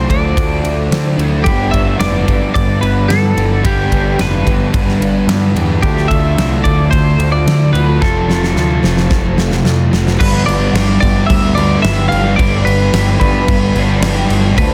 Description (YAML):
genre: rock, shoegaze and dream pop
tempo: 110 BPM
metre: 4/4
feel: straight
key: G mixolydian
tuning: A4 = 440 Hz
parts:
  - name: twelve-string electric guitar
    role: melody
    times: 0.0-14.7 s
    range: G4 to F5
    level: -22 LUFS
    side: equal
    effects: vibrato effect, slapback echo
  - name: picked twelve-string acoustic guitar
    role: arpeggios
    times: 0.0-14.7 s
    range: F3 to A4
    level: -29 LUFS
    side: equal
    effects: ensemble chorus, slapback echo
  - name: crunchy overdriven guitar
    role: riff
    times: 0.0-14.7 s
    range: D3 to B4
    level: -22 LUFS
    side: equal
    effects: reverse reverb
  - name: thick fuzz guitar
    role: riff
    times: 0.0-14.7 s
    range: F2 to D4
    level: -19 LUFS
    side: equal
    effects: distortion, ensemble chorus
  - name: growling picked electric bass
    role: bass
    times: 0.0-14.7 s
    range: F1 to D3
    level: -19 LUFS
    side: equal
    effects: overdrive
  - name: huge arena drum kit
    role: drums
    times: 0.1-14.7 s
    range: crash cymbal, kick drum, ride cymbal, snare drum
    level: -19 LUFS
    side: equal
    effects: none
room: light reverb, studio ambience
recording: dense, heavily limited modern master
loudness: -13 LUFS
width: mono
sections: 0.0-10.2 A section; 10.2-14.7 B section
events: drum fill 8.0-10.2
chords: 0.0 Dm7; 1.5 G; 5.8 Dm7; 8.0 F; 10.2 G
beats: 0.37 0.91 | 1.46 2.00 2.55 3.09 | 3.64 4.18 4.73 5.28 | 5.82 6.37 6.92 7.46 | 8.01 8.56 9.11 9.65 | 10.20 10.75 11.29 11.84 | 12.39 12.93 13.48 14.03 | 14.57